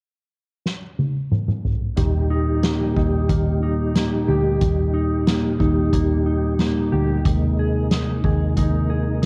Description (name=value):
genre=dream pop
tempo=91 BPM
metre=4/4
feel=straight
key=Eb major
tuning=A4 = 440 Hz
part: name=soft-mallet drum kit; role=drums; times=0.7-9.3 s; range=hi-hat, kick drum, snare drum, toms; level=-25 LUFS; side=equal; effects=cassette tape
part: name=mellow tonewheel organ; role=sustained chords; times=2.0-9.3 s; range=Bb2 to G4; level=-26 LUFS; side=equal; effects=chorus vibrato, slow rotary speaker, cassette tape
part: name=mellow electric guitar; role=arpeggios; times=2.0-9.3 s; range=Eb3 to Ab4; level=-28 LUFS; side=equal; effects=lush chorus, cassette tape, tape echo
part: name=vintage muted picked electric bass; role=bass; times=2.0-9.3 s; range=D2 to Eb2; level=-24 LUFS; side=equal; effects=none
room=light reverb, small room ambience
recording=home recording on cassette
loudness=-21 LUFS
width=mono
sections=0.0-2.0 A section; 2.0-9.3 B section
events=drum fill 0.7-2.0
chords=0.0 N.C.; 2.0 Eb; 7.3 Abadd9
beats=0.00 0.66 1.32 | 1.98 2.63 3.29 3.95 | 4.61 5.27 5.93 6.59 | 7.25 7.91 8.57 9.23